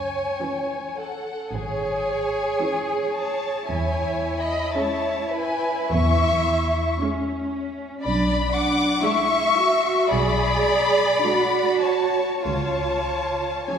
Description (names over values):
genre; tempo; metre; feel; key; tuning
classical, slow romantic movement for string orchestra; 48-60 BPM; 4/4; rubato; C# minor; A4 = 441 Hz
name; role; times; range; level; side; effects
dark studio violin section; melody; 0.0-13.8 s; F#5 to D6; -26 LUFS; left 4 dB; none
rich studio violin section; second line; 0.0-13.8 s; A4 to F#5; -25 LUFS; equal; none
rich chamber double bass section; bass; 0.0-13.5 s; G#1 to E2; -27 LUFS; right 1 dB; none
warm symphonic viola section; accompaniment; 0.4-13.8 s; E3 to D4; -32 LUFS; right 1 dB; none
rich chamber cello section; bass; 1.5-13.8 s; C#4 to G#4; -26 LUFS; right 2 dB; none
room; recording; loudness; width
wet concert hall reverb, RT60 2.2 s; heard from further back in the room; -20 LUFS; side -7 dB against mid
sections
0.0-13.8 A section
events
none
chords
0.0 C#m; 3.7 C#m/E; 8.0 G#dim/B; 12.4 C#